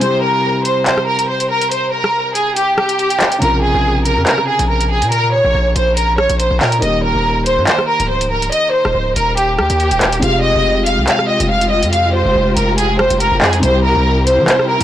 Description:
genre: hip hop, drill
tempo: 141 BPM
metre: 4/4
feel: half-time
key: F minor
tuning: A4 = 440 Hz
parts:
  - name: warm symphonic violin section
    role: melody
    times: 0.0-14.8 s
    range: G4 to F5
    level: -14 LUFS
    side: equal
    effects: low-pass filter
  - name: dark concert grand piano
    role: accompaniment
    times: 0.0-14.8 s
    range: C3 to Bb4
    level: -22 LUFS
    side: equal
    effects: low-pass filter
  - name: drill drum kit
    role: drums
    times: 0.0-14.8 s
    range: handclaps, hi-hat, rim click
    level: -18 LUFS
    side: equal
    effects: none
  - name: distorted 808-style bass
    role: bass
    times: 3.4-14.8 s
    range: Db1 to E3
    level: -18 LUFS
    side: equal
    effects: distortion
  - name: warm symphonic string section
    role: sustained chords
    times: 10.2-14.8 s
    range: C3 to G4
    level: -21 LUFS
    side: left 1 dB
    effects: none
room: small room ambience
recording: blown-out, overdriven recording, vinyl crackle, overdrive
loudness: -12 LUFS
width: side -12 dB against mid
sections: 0.0-10.2 A section; 10.2-14.8 B section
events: break 0.0-3.4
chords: 0.0 C; 3.4 Bbmadd9; 6.8 Eb; 10.2 Fmadd9; 13.6 C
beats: | 0.01 0.44 0.86 1.29 | 1.72 2.14 2.57 2.99 | 3.42 3.84 4.27 4.69 | 5.12 5.54 5.97 6.39 | 6.82 7.25 7.67 8.10 | 8.52 8.95 9.37 9.80 | 10.22 10.65 11.08 11.50 | 11.93 12.35 12.78 13.20 | 13.63 14.05 14.48

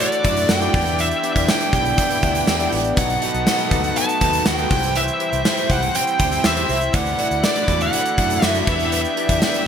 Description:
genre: 1980s-style pop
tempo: 121 BPM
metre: 4/4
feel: straight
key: E minor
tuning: A4 = 440 Hz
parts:
  - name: high-gain lead guitar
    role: melody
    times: 0.0-9.7 s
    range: D5 to A5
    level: -21 LUFS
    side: equal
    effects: distortion
  - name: bell-like tine electric piano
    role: accompaniment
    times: 0.0-9.7 s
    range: A3 to E5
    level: -26 LUFS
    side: left 3 dB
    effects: phaser
  - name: cranked stack guitar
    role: accompaniment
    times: 0.0-9.7 s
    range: B2 to E4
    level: -32 LUFS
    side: right 3 dB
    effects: none
  - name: warm analog pad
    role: sustained chords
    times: 0.0-9.7 s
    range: D#4 to A5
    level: -28 LUFS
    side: right 1 dB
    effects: chorus, tremolo
  - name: direct-recorded clean electric guitar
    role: riff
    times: 0.0-9.7 s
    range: E3 to G4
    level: -29 LUFS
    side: right 4 dB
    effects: ensemble chorus
  - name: gated 80s drum kit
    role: drums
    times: 0.0-9.7 s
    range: crash cymbal, hi-hat, kick drum, snare drum, tambourine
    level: -20 LUFS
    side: equal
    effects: gated reverb
  - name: egg shaker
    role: percussion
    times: 0.1-9.7 s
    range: none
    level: -38 LUFS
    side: right 9 dB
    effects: none
  - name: vintage muted fingered electric bass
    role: bass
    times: 0.2-9.4 s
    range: A1 to F#2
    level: -26 LUFS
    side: equal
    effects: none
room: wet plate reverb, RT60 1.4 s, studio reverb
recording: bright 1980s-style digital production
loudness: -16 LUFS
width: side -8 dB against mid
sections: 0.0-9.7 A section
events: none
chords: 0.0 Dadd9; 0.7 Em7; 3.0 B7; 4.7 C; 6.9 Dadd9; 8.7 Em7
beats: 0.00 0.49 | 0.99 1.48 1.98 2.48 | 2.97 3.47 3.96 4.46 | 4.96 5.45 5.95 6.44 | 6.94 7.43 7.93 8.43 | 8.92 9.42

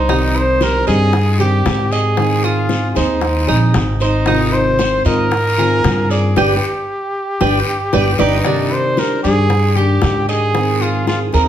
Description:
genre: latin, Cuban son and guajira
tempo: 115 BPM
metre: 4/4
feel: straight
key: C minor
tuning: A4 = 440 Hz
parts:
  - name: warm trumpet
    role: melody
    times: 0.0-11.5 s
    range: Eb4 to C5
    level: -18 LUFS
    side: right 1 dB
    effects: plate reverb
  - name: nylon-string guitar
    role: accompaniment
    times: 0.0-11.5 s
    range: C3 to Ab4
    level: -20 LUFS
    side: left 2 dB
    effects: none
  - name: Cuban tres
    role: arpeggios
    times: 0.0-11.5 s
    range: D4 to Eb5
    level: -20 LUFS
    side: right 4 dB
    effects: none
  - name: upright bass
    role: bass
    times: 0.0-11.5 s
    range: G1 to Ab2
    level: -17 LUFS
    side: equal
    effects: none
  - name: bongos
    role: percussion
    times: 0.1-11.5 s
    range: none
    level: -23 LUFS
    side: left 4 dB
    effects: none
  - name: guiro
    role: percussion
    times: 0.1-11.5 s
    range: none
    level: -28 LUFS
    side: left 4 dB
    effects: none
room: wet large studio reverb, RT60 1.0 s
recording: heard from further back in the room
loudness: -13 LUFS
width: side -10 dB against mid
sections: 0.0-8.5 A section; 8.5-11.5 A section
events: band accent 6.4-8.5; drum fill 8.2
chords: 0.1 Cm; 2.2 Ab; 4.3 Fm7/Ab; 6.4 G; 8.5 Cmadd9; 10.6 Abadd9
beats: | 0.09 0.62 1.14 1.66 | 2.18 2.71 3.23 3.75 | 4.28 4.80 5.32 5.84 | 6.37 6.89 7.41 7.93 | 8.46 8.98 9.50 10.03 | 10.55 11.07

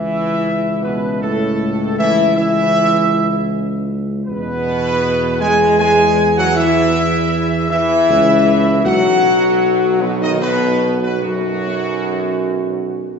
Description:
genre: classical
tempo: 78 BPM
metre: 3/4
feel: straight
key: E major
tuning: A4 = 441 Hz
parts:
  - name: mellow trumpet section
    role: melody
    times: 0.0-13.2 s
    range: F#4 to G#5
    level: -18 LUFS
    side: equal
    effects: none
  - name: clear trombone section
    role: sustained chords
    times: 0.0-13.2 s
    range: F#2 to G#3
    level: -20 LUFS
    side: right 2 dB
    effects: none
  - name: warm French horn section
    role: sustained chords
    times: 0.0-13.2 s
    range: F#3 to G#4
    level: -20 LUFS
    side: left 4 dB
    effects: none
  - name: mellow tuba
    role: bass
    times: 0.0-13.2 s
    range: B1 to E2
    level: -20 LUFS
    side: right 2 dB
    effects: none
room: wet concert hall reverb, RT60 2.0 s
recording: recorded in a church or concert hall, nothing above 7.9 kHz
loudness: -13 LUFS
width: side -6 dB against mid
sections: 0.0-13.2 A section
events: none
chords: 0.0 A/C#; 4.3 E5; 8.8 B5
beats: 0.44 1.22 | 1.98 2.75 3.51 | 4.27 5.03 5.79 | 6.55 7.32 8.08 | 8.85 9.62 10.42 | 11.22 12.04 12.84

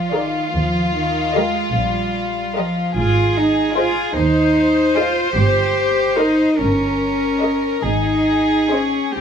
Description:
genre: classical, slow romantic movement for string orchestra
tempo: 49 BPM (dotted quarters)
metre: 6/8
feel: uneven beats, rubato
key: Ab major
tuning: A4 = 440 Hz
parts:
  - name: warm chamber violin section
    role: second line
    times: 0.0-9.2 s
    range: F4 to C5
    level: -21 LUFS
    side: left 3 dB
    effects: none
  - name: warm studio cello section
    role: bass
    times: 0.0-9.2 s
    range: Eb3 to G4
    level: -18 LUFS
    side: right 1 dB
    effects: none
  - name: warm symphonic double bass section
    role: bass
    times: 0.0-9.2 s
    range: G1 to Eb2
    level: -22 LUFS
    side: right 2 dB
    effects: none
  - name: warm studio violin section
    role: melody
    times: 0.1-9.0 s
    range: D5 to Eb5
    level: -26 LUFS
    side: left 7 dB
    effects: none
  - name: dark symphonic viola section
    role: accompaniment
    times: 0.1-9.0 s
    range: G4 to C5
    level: -22 LUFS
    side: equal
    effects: none
room: light reverb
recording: close, detailed microphones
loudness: -15 LUFS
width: side -7 dB against mid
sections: 0.0-9.2 A section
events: none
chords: 0.0 Bb7; 0.5 Eb; 3.0 Ab; 5.4 Eb7/G; 7.8 Ab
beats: | 0.54 1.75 | 2.98 4.17 | 5.36 6.58 | 7.84 9.16

